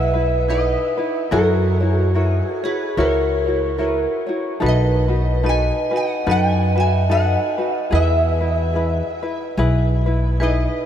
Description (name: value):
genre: Hawaiian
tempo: 73 BPM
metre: 4/4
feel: swing 59% on 8ths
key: E major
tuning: A4 = 438 Hz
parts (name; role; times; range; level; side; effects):
- metal-body resonator slide guitar; melody; 0.0-10.9 s; A#4 to G#5; -24 LUFS; equal; ensemble chorus, analog delay
- vibraphone with hard mallets; second line; 0.0-10.9 s; F#4 to E5; -24 LUFS; right 3 dB; none
- tenor ukulele; accompaniment; 0.0-10.9 s; D#4 to C#5; -23 LUFS; left 2 dB; none
- upright bass; bass; 0.0-10.6 s; B1 to F#2; -19 LUFS; equal; none
room: moderate huge ambient reverb, RT60 7.6 s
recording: dreamy mix soaked in reverb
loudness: -16 LUFS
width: side -9 dB against mid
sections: 0.0-10.9 A section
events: none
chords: 0.0 Emaj7; 1.3 F#7; 4.6 B7; 7.9 Emaj7